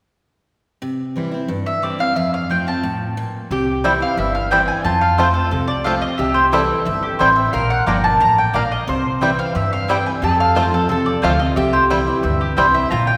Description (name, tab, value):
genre	bluegrass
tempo	179 BPM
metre	4/4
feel	straight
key	C mixolydian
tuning	A4 = 440 Hz
part	picked steel-string acoustic guitar	accompaniment	0.8-13.2 s	F2 to F4	-25 LUFS	equal	none
part	mandolin	melody	1.7-13.2 s	G4 to Bb5	-21 LUFS	equal	none
part	lap resonator guitar	second line	3.5-13.2 s	E4 to C5	-27 LUFS	equal	none
part	upright bass	bass	3.5-13.2 s	G1 to G2	-25 LUFS	equal	none
part	bluegrass banjo	melody	3.8-12.7 s	G3 to F4	-27 LUFS	equal	none
part	mandolin	stabs	3.8-12.7 s	Bb3 to Bb5	-26 LUFS	equal	none
room	wet concert hall reverb, RT60 2.4 s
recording	recorded in a church or concert hall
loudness	-18 LUFS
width	mono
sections	0.8-3.5 A section; 3.5-13.2 B section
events	none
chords	0.8 C; 2.2 F; 3.5 C; 4.8 F; 6.2 C; 7.5 Bb; 8.9 C; 10.2 F; 11.6 C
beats	| 0.82 1.16 1.49 1.83 | 2.17 2.50 2.84 3.17 | 3.51 3.84 4.18 4.51 | 4.85 5.19 5.52 5.86 | 6.19 6.53 6.87 7.20 | 7.54 7.87 8.21 8.54 | 8.88 9.22 9.55 9.89 | 10.22 10.56 10.89 11.23 | 11.57 11.90 12.24 12.57 | 12.91